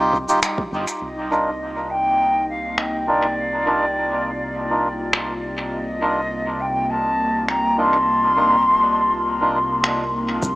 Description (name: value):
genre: ambient dub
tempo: 102 BPM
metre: 4/4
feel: straight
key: C minor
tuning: A4 = 441 Hz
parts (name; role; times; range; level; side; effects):
- warbly tape-like pad; sustained chords; 0.0-10.6 s; C3 to F4; -29 LUFS; equal; chorus, built-in reverb, phaser
- melodica; stabs; 0.0-9.6 s; D4 to Bb4; -23 LUFS; equal; low-pass filter, dub echo
- round analog bass; bass; 0.0-10.6 s; G1 to C2; -32 LUFS; equal; none
- electronic kick drum; drums; 0.1-0.7, 10.4-10.6 s; none; -28 LUFS; equal; overdrive
- electronic cabasa and finger snaps; drums; 0.3-10.6 s; none; -26 LUFS; equal; overdrive, low-pass filter on perc, low-pass filter on snare, low-pass filter on room, dub echo
- concert flute; melody; 1.0-9.8 s; D5 to C6; -20 LUFS; equal; dub echo
room: moderate plate reverb, RT60 2.1 s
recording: echo-heavy mix, small speaker sound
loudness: -18 LUFS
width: side -20 dB against mid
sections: 0.0-1.0 A section; 1.0-10.4 B section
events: none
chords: 0.0 Cmadd11; 1.0 Cm11